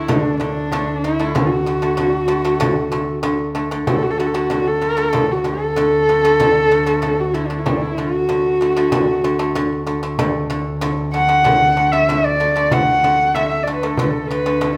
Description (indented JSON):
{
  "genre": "mongolian traditional, Mongolian folk",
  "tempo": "95 BPM",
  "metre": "4/4",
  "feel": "straight",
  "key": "D gong mode",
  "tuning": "A4 = 440 Hz",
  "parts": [
    { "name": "dark horsehead fiddle", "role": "melody", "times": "0.0-14.8 s", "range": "D4 to F#5", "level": "-19 LUFS", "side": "equal", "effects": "none" },
    { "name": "pipa", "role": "arpeggios", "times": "0.0-14.8 s", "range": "D3 to A3", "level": "-24 LUFS", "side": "equal", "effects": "none" },
    { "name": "rich double bass", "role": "drone", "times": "0.0-14.8 s", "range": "D2", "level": "-28 LUFS", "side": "equal", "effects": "none" },
    { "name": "frame drum", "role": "percussion", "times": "0.1-14.8 s", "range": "none", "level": "-26 LUFS", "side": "equal", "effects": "none" }
  ],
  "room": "wet large studio reverb, RT60 1.1 s",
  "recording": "band playing live in one room",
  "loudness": "-18 LUFS",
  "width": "mono",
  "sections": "0.0-14.8 A section",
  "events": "none",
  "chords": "0.0 D5",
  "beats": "0.09 0.72 | 1.35 1.98 2.61 3.25 | 3.88 4.51 5.14 5.77 | 6.40 7.04 7.67 8.30 | 8.93 9.56 10.19 10.82 | 11.46 12.09 12.72 13.35 | 13.99 14.62"
}